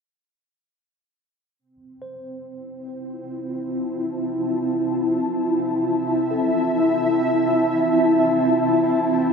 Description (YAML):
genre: ambient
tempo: free time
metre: none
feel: none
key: F major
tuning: A4 = 439 Hz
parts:
  - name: ethereal airy pad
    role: sustained chords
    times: 2.9-9.3 s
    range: C4 to A5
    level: -19 LUFS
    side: equal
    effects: ensemble chorus, built-in reverb, tremolo
  - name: mellow tine electric piano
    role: arpeggios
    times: 2.0-9.3 s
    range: A4 to C5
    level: -40 LUFS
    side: right 1 dB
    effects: medium stereo tremolo, tape echo
room: wet cathedral reverb, RT60 5.5 s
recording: in a vast, echoing space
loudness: -18 LUFS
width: side -5 dB against mid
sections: 1.6-9.3 A section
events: fade-in on tine electric piano 1.6-9.3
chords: 1.6 Fmaj7